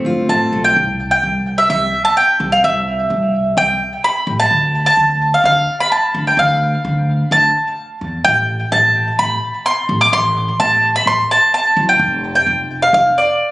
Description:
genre	indie folk with a building arrangement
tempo	128 BPM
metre	4/4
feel	straight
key	C major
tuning	A4 = 442 Hz
part	mandolin	melody	0.0-13.5 s	C5 to D6	-13 LUFS	equal	tape echo
part	fingerpicked steel-string acoustic guitar	accompaniment	0.0-0.7 s	F2 to F4	-17 LUFS	left 1 dB	none
part	upright bass	bass	0.0-13.1 s	F1 to E2	-21 LUFS	equal	none
room	light reverb, small room ambience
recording	recorded on a phone in the room, club reverb, compression, nothing above 10.3 kHz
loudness	-12 LUFS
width	side -18 dB against mid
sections	0.8-13.5 A section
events	none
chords	0.0 F; 0.8 C; 4.5 Dm; 8.3 Am; 12.0 N.C.

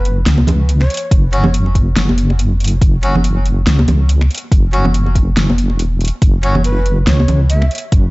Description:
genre	deep dubstep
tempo	141 BPM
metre	4/4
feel	swing 57% on 16ths, half-time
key	unclear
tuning	A4 = 440 Hz
part	breathy mellow shakuhachi	melody	0.0-1.5, 6.4-7.8 s	B4 to E5	-25 LUFS	right 1 dB	dub echo
part	deep soft wobble bass	bass	0.0-8.1 s	E1 to C#2	-13 LUFS	equal	chorus
part	deep house drum kit	drums	0.1-8.0 s	finger snaps, hi-hat, snare drum	-20 LUFS	equal	none
part	congas	percussion	0.4-7.7 s	none	-19 LUFS	right 1 dB	dub echo
part	electronic kick drum	drums	1.1-8.0 s	none	-11 LUFS	equal	none
part	melodica	stabs	1.3-6.6 s	F#3 to F#4	-24 LUFS	left 1 dB	dub echo
room	small room ambience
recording	dark, warm production, nothing above 7.9 kHz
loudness	-11 LUFS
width	side -22 dB against mid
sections	0.0-8.1 A section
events	none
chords	0.0 F#5

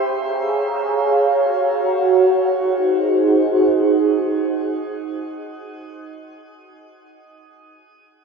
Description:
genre	dream pop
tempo	95 BPM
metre	4/4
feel	straight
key	Ab mixolydian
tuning	A4 = 443 Hz
part	lush unison pad	sustained chords	0.0-5.9 s	Eb4 to Bb5	-16 LUFS	right 2 dB	chorus, phaser, low-pass filter, shimmer reverb
room	wet lush hall reverb, RT60 3.1 s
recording	dreamy mix soaked in reverb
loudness	-16 LUFS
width	side -5 dB against mid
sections	0.0-2.6 A section; 2.6-5.1 B section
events	filter sweep on analog synth pad 0.0-2.6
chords	0.1 Db6; 1.3 Gbmaj7; 2.6 Ab7

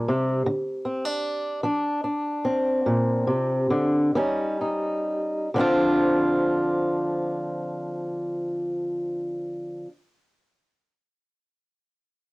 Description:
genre	acoustic country blues, solo or duo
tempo	42-53 BPM (dotted quarters)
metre	12/8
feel	straight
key	D minor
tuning	A4 = 440 Hz
part	fingerpicked swing-style acoustic guitar	solo	0.0-9.9 s	Bb2 to G4	-23 LUFS	equal	none
room	light reverb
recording	home recording on cassette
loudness	-22 LUFS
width	side -22 dB against mid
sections	0.0-5.5 A section; 5.5-11.3 B section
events	slowing down 0.0-5.5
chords	0.5 Dm7; 4.1 Eb7; 5.5 Dm7

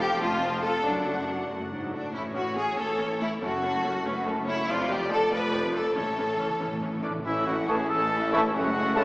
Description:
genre	cinematic, heroic adventure film score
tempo	94 BPM (dotted quarters)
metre	6/8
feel	straight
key	A major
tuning	A4 = 440 Hz
part	rich symphonic violin section	melody	0.0-9.0 s	A4 to A5	-35 LUFS	left 1 dB	none
part	clear symphonic violin section	second line	0.0-9.0 s	A3 to B4	-28 LUFS	left 1 dB	none
part	clear symphonic viola section	accompaniment	0.0-9.0 s	E3 to F#4	-34 LUFS	equal	none
part	clear chamber double bass section	bass	0.0-9.0 s	F1 to A1	-38 LUFS	equal	none
part	rich symphonic cello section	bass	0.0-9.0 s	F2 to A2	-34 LUFS	equal	none
part	timpani	percussion	6.0-7.9 s	A2	-40 LUFS	equal	none
part	warm trumpet	stabs	7.0-9.0 s	D4 to A4	-27 LUFS	equal	none
part	clear tuba	bass	7.3-9.0 s	F#1 to A1	-32 LUFS	equal	none
part	silver concert flute	second line	7.7-9.0 s	A5	-32 LUFS	equal	none
part	warm clarinet	second line	7.7-9.0 s	G#3 to A3	-39 LUFS	left 1 dB	none
part	warm cor anglais	second line	7.7-9.0 s	C#5	-34 LUFS	equal	none
part	clear trombone section	sustained chords	7.7-9.0 s	C#3 to A3	-31 LUFS	equal	none
part	mellow French horn section	sustained chords	7.7-9.0 s	C#4 to A4	-35 LUFS	left 1 dB	none
room	wet scoring stage reverb, RT60 1.7 s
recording	heard from further back in the room, small speaker sound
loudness	-24 LUFS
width	side -21 dB against mid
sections	0.0-7.3 A section; 7.3-9.0 B section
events	timpani fill 6.0-7.3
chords	0.0 F; 0.8 D/F#; 2.1 A; 3.4 F#m; 4.7 F; 6.0 A; 8.5 F#madd9

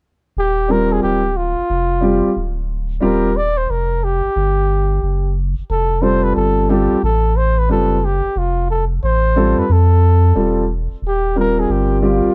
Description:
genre	hip hop, jazz-hop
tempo	90 BPM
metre	4/4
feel	swing 64% on 16ths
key	Eb major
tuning	A4 = 440 Hz
part	breathy flugelhorn	melody	0.4-12.3 s	F4 to D5	-21 LUFS	equal	plate reverb
part	saturated sub bass	bass	0.4-12.3 s	D1 to F2	-20 LUFS	equal	none
part	dark baby grand piano	accompaniment	0.7-12.3 s	G3 to Cb5	-19 LUFS	equal	plate reverb
room	moderate booth ambience, RT60 0.2 s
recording	dark, warm production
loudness	-16 LUFS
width	mono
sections	0.4-12.3 A section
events	none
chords	0.4 Ebmaj9; 5.7 Fadd9; 11.0 Ebadd9

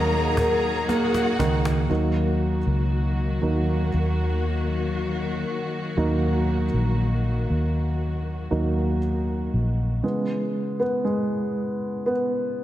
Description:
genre	pop ballad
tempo	59 BPM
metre	4/4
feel	straight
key	unclear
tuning	A4 = 440 Hz
part	warm studio violin section	second line	0.0-1.9 s	F#4 to A#5	-29 LUFS	left 2 dB	slapback echo
part	dark upright piano	accompaniment	0.0-12.6 s	C#3 to A#4	-25 LUFS	right 1 dB	none
part	warm studio string section	sustained chords	0.0-10.0 s	D#3 to G#4	-29 LUFS	left 3 dB	none
part	vintage muted fingered electric bass	bass	0.0-10.0 s	A#1 to D#2	-24 LUFS	equal	none
part	cajon	drums	0.4-1.9 s	none	-33 LUFS	equal	none
room	moderate concert hall reverb, RT60 2.2 s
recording	big arena sound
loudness	-22 LUFS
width	side -13 dB against mid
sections	0.0-1.9 A section; 1.9-10.0 B section; 10.0-12.6 C section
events	drum fill 0.9-1.9; upright piano solo 1.9-10.0, 10.0-12.6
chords	0.0 D#m; 10.0 C#m7

